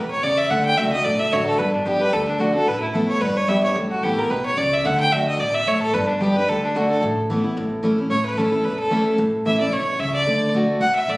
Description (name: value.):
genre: bluegrass.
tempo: 221 BPM.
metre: 4/4.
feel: swing 55% on 8ths.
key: A mixolydian.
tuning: A4 = 440 Hz.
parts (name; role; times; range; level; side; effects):
clear fiddle; melody; 0.0-11.2 s; D4 to G5; -20 LUFS; equal; none.
picked steel-string acoustic guitar; accompaniment; 0.0-11.2 s; E2 to G4; -22 LUFS; equal; none.
upright bass; bass; 0.0-11.2 s; E1 to E2; -30 LUFS; equal; none.
room: moderate large studio reverb, RT60 1.0 s.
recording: recorded on a phone in the room, studio reverb.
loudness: -18 LUFS.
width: side -21 dB against mid.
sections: 0.0-8.1 A section; 8.1-11.2 B section.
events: fiddle solo 8.1-11.2.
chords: 0.0 Asus2 (rootless); 0.5 D; 1.6 G; 2.1 D; 2.7 Asus2; 3.2 G; 3.8 Asus2; 4.9 D; 5.9 G; 6.5 D; 7.0 Asus2; 7.6 A; 10.3 D.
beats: 0.24 | 0.51 0.78 1.05 1.32 | 1.59 1.86 2.13 2.41 | 2.68 2.95 3.22 3.49 | 3.77 4.04 4.31 4.58 | 4.85 5.12 5.39 5.67 | 5.94 6.21 6.48 6.75 | 7.02 7.29 7.56 7.83 | 8.10 8.37 8.64 8.91 | 9.19 9.46 9.73 10.00 | 10.27 10.54 10.81 11.08.